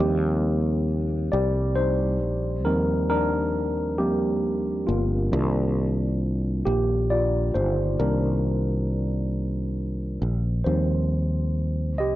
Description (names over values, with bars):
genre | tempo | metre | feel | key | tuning
R&B | 45 BPM (dotted quarters) | 6/8 | straight | unclear | A4 = 440 Hz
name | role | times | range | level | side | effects
tine electric piano | accompaniment | 0.0-12.2 s | Eb3 to Eb5 | -25 LUFS | equal | wide subtle chorus
fretless electric bass | bass | 0.0-12.2 s | G1 to Eb2 | -25 LUFS | equal | transformer saturation
room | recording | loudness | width
little or no reverb | dry, gritty hardware recording | -22 LUFS | side -15 dB against mid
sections
0.0-12.2 A section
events
tine electric piano solo 0.0-12.2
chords
0.0 Cm9; 10.7 Eb6